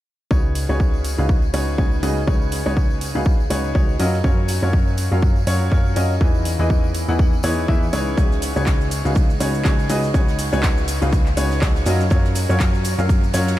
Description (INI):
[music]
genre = piano house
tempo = 122 BPM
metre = 4/4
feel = swing 56% on 16ths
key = unclear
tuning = A4 = 440 Hz
[part]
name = clear baby grand piano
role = riff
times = 0.3-13.6 s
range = Db3 to Gb5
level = -22 LUFS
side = left 1 dB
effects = sidechain pumping, diffuse ambient delay
[part]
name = plucky analog bass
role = bass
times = 0.3-13.6 s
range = Db2 to Gb2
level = -22 LUFS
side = equal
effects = sidechain pumping
[part]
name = electronic kick drum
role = drums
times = 0.3-13.2 s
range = none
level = -18 LUFS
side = equal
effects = overdrive
[part]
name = tambourine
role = percussion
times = 0.3-13.6 s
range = none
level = -38 LUFS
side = left 4 dB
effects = none
[part]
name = house drum kit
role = drums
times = 0.6-13.6 s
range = handclaps, hi-hat, shaker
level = -30 LUFS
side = right 1 dB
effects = overdrive
[part]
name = swinging big-band drum kit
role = drums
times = 8.2-13.6 s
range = hi-hat, snare drum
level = -38 LUFS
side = right 3 dB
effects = none
[sound]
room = light reverb, small room ambience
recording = none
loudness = -16 LUFS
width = side -14 dB against mid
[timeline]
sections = 0.3-13.6 A section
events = none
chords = 0.3 Db9sus4; 4.0 Gbmaj7; 6.2 Emaj7; 8.2 Db9sus4; 11.9 Gbmaj7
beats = | 0.31 0.80 1.29 1.78 | 2.27 2.77 3.26 3.75 | 4.24 4.73 5.22 5.72 | 6.21 6.70 7.19 7.68 | 8.18 8.67 9.16 9.65 | 10.14 10.63 11.13 11.62 | 12.11 12.60 13.09